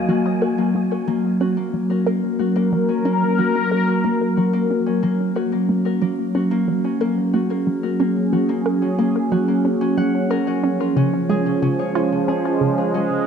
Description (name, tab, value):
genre	ambient, sequencer-driven space music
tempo	91 BPM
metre	4/4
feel	straight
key	unclear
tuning	A4 = 440 Hz
part	sweeping resonant pad	sustained chords	0.0-13.3 s	F3 to F5	-20 LUFS	right 2 dB	chorus
part	Celtic harp	arpeggios	0.0-13.3 s	Bb3 to Gb5	-23 LUFS	left 5 dB	auto-pan, ping-pong delay
part	resonant blip pluck	riff	0.1-13.0 s	Db3 to Bb4	-25 LUFS	equal	chorus, ping-pong delay
room	wet plate reverb, RT60 2.5 s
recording	cassette tape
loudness	-17 LUFS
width	side -7 dB against mid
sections	0.1-13.3 A section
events	filter sweep on synth arpeggio sound 0.1-13.3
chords	0.1 Gb; 10.6 Db